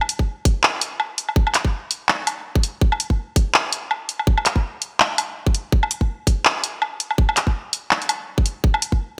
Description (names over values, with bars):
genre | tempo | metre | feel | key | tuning
drum and bass | 165 BPM | 4/4 | swing 57% on 16ths, half-time | none | none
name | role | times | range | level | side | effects
drum and bass drum kit | drums | 0.0-8.9 s | handclaps, hi-hat, woodblock | -22 LUFS | equal | studio reverb
electronic kick drum | drums | 0.2-9.0 s | none | -20 LUFS | equal | studio reverb
room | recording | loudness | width
light reverb, digital ambience | bright 1980s-style digital production | -21 LUFS | mono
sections
0.0-9.2 A section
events
none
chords
none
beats
0.27 0.63 1.00 | 1.36 1.73 2.09 2.45 | 2.82 3.18 3.54 3.91 | 4.27 4.63 5.00 5.36 | 5.72 6.09 6.45 6.82 | 7.18 7.54 7.91 8.27 | 8.63